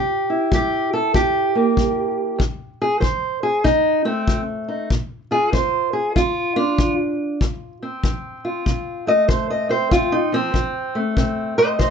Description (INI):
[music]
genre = acoustic country blues, solo or duo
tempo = 96 BPM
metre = 4/4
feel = swing 64% on 8ths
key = F major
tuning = A4 = 438 Hz
[part]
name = fingerpicked steel-string acoustic guitar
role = melody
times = 0.0-11.9 s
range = F2 to Eb5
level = -18 LUFS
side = right 1 dB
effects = none
[part]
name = kick drum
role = drums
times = 0.5-11.9 s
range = none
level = -22 LUFS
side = left 2 dB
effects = none
[sound]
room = light reverb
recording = nothing above 8.0 kHz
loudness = -18 LUFS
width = side -6 dB against mid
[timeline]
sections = 0.0-2.4 A section; 2.4-11.9 B section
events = steel-string acoustic guitar solo 2.4-11.9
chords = 0.0 C7 (rootless); 2.4 F7; 4.9 Bb; 7.4 F7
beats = 0.51 1.14 1.77 | 2.40 3.02 3.65 4.28 | 4.90 5.53 6.16 6.79 | 7.41 8.04 8.67 9.29 | 9.92 10.55 11.17 11.80